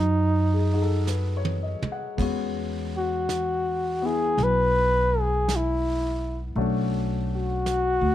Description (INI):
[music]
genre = jazz ballad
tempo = 55 BPM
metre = 4/4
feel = swing 68% on 8ths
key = E major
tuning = A4 = 440 Hz
[part]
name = breathy flugelhorn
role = melody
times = 0.0-8.1 s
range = D#4 to B4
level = -24 LUFS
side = left 1 dB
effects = plate reverb
[part]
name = warm baby grand piano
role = accompaniment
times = 0.0-8.1 s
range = G#3 to F#5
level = -31 LUFS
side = left 6 dB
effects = none
[part]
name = upright bass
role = bass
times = 0.0-8.1 s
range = B1 to F#2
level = -26 LUFS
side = equal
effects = none
[part]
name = vintage brush drum kit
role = drums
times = 1.1-8.1 s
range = brushed snare drum, hi-hat, kick drum, ride cymbal, snare drum, toms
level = -35 LUFS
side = right 3 dB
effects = none
[sound]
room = little or no reverb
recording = none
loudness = -22 LUFS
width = side -12 dB against mid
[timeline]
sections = 0.0-2.2 A section; 2.2-8.1 B section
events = drum fill 1.1-2.2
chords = 0.0 B9; 2.2 E69; 6.6 Bm7